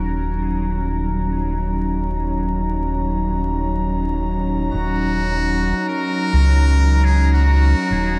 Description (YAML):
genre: ambient dub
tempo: free time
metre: none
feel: none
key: Eb minor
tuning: A4 = 440 Hz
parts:
  - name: airy breathy pad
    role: sustained chords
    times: 0.0-8.2 s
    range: Gb3 to Bb5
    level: -24 LUFS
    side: equal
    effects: chorus
  - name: round analog bass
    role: bass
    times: 0.0-8.2 s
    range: Eb1 to Db2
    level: -21 LUFS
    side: equal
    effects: none
  - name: trumpet with metal mute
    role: melody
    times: 4.7-8.2 s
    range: Gb4 to Bb4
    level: -29 LUFS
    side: equal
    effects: dub echo
room: light reverb, studio ambience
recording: vinyl crackle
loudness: -19 LUFS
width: mono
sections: 0.0-4.7 A section; 4.7-8.2 B section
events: filter sweep on analog synth pad 0.0-4.7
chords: 0.0 Ebm7